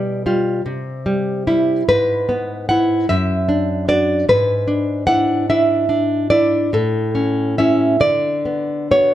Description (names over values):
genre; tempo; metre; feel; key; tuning
romantic piece for solo classical guitar; 49 BPM (dotted quarters); 6/8; rubato; unclear; A4 = 442 Hz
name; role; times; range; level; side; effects
nylon-string guitar; solo; 0.0-9.1 s; F#2 to F#5; -15 LUFS; equal; none
room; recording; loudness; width
moderate recital hall reverb, RT60 1.3 s; none; -15 LUFS; side -12 dB against mid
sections
0.0-9.1 A section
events
none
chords
0.0 G7/B; 0.6 C; 1.9 E/G#; 3.1 D/F#; 4.3 E7/G#; 6.7 A; 8.0 Bm/D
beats
0.63 | 1.85 3.07 | 4.28 5.50 | 6.75 8.02